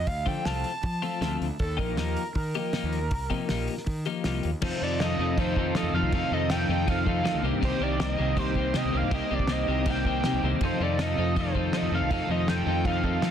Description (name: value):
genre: indie rock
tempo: 160 BPM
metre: 4/4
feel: straight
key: F mixolydian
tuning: A4 = 440 Hz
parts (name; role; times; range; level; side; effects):
- overdriven synth lead; melody; 0.0-13.3 s; A4 to A5; -32 LUFS; right 2 dB; tape echo
- fuzz fingered electric bass; bass; 0.0-13.3 s; Bb1 to F3; -30 LUFS; right 1 dB; overdrive
- cloth-damped thuddy drum kit; drums; 0.1-13.3 s; crash cymbal, hi-hat, kick drum, snare drum; -32 LUFS; right 1 dB; none
- twelve-string electric guitar; riff; 0.3-13.3 s; F2 to G4; -30 LUFS; left 9 dB; none
- overdriven electric guitar; riff; 4.6-13.3 s; F3 to A4; -32 LUFS; right 11 dB; ensemble chorus, tape echo
room: small room ambience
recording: dense, heavily limited modern master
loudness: -24 LUFS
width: side -9 dB against mid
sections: 0.0-4.6 A section; 4.6-13.3 B section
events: none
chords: 0.0 F; 1.6 Ebadd9; 4.6 F7; 7.4 Cm7; 10.6 F7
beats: | 0.07 0.45 0.83 1.22 | 1.60 1.98 2.36 2.74 | 3.12 3.50 3.87 4.25 | 4.63 5.00 5.38 5.75 | 6.13 6.50 6.88 7.25 | 7.62 8.00 8.37 8.74 | 9.12 9.49 9.87 10.24 | 10.61 10.98 11.36 11.73 | 12.10 12.47 12.84 13.21